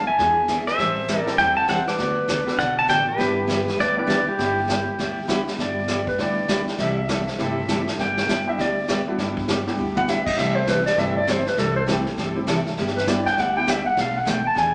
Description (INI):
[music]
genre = country, western swing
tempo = 200 BPM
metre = 4/4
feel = swing 63% on 8ths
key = G major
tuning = A4 = 443 Hz
[part]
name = pedal steel guitar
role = melody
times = 0.0-5.3 s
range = G4 to A5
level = -24 LUFS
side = equal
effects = none
[part]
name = growling clarinet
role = second line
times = 0.0-14.7 s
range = E4 to A5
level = -27 LUFS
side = equal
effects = none
[part]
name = upright bass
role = bass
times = 0.0-14.7 s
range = G1 to E2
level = -36 LUFS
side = equal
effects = none
[part]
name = clear upright piano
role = accompaniment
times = 0.2-13.7 s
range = G3 to A4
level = -32 LUFS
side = equal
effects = none
[part]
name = picked steel-string acoustic guitar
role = accompaniment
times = 0.2-14.7 s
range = B2 to A4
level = -29 LUFS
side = equal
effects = none
[part]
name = vintage brush drum kit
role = drums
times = 0.2-14.7 s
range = brushed snare drum, crash cymbal, hi-hat, kick drum, snare drum, toms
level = -31 LUFS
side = equal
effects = none
[sound]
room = wet large studio reverb, RT60 1.3 s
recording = nothing above 10.3 kHz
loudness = -22 LUFS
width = mono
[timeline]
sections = 0.0-5.6 A section; 5.6-14.7 B section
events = clarinet solo 5.6-14.7; drum fill 9.8-10.1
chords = 0.2 E7b9; 0.8 Am7; 2.0 D6; 3.2 G6; 6.8 C6; 8.0 G6; 10.4 C6; 12.8 G6; 14.0 Bm7b5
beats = 0.18 0.48 | 0.78 1.08 1.38 1.68 | 1.98 2.28 2.58 2.88 | 3.19 3.49 3.79 4.09 | 4.39 4.69 4.99 5.29 | 5.59 5.89 6.19 6.49 | 6.79 7.09 7.39 7.69 | 7.99 8.29 8.59 8.88 | 9.18 9.48 9.78 10.08 | 10.38 10.68 10.98 11.28 | 11.58 11.88 12.18 12.48 | 12.78 13.08 13.38 13.67 | 13.97 14.27 14.57